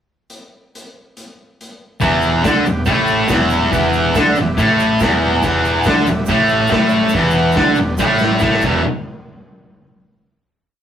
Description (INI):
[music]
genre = garage rock duo or trio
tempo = 140 BPM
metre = 4/4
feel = straight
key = E minor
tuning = A4 = 440 Hz
[part]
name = raw garage drum kit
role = drums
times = 0.3-8.7 s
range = crash cymbal, hi-hat, kick drum, snare drum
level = -21 LUFS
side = equal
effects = none
[part]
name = combo organ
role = sustained chords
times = 2.0-8.8 s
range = G4 to G5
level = -28 LUFS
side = right 1 dB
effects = none
[part]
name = thick fuzz guitar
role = riff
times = 2.0-8.8 s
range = E2 to D4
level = -14 LUFS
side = equal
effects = distortion
[part]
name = fuzz fingered electric bass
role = bass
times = 2.0-8.8 s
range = E1 to D2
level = -25 LUFS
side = equal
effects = overdrive
[part]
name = tube shaker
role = percussion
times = 2.0-8.8 s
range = none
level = -40 LUFS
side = right 5 dB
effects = none
[sound]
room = moderate studio ambience, RT60 0.5 s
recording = rough rehearsal-room recording, warm saturation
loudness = -12 LUFS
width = side -9 dB against mid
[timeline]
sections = 0.3-2.0 pickup bar; 2.0-8.8 riff; 8.8-10.6 final hit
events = drum fill 8.0-8.8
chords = 0.3 N.C.; 2.0 Em; 8.8 N.C.